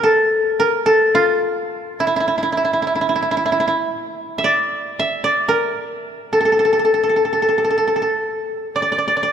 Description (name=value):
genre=japanese traditional, Japanese chamber music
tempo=53-58 BPM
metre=2/4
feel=rubato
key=unclear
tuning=A4 = 439 Hz
part: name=koto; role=solo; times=0.0-9.3 s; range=E4 to E5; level=-16 LUFS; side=equal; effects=none
room=moderate church reverb, RT60 3.2 s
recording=minimal, uncompressed stereo recording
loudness=-16 LUFS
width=side -8 dB against mid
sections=0.0-9.3 A section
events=none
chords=none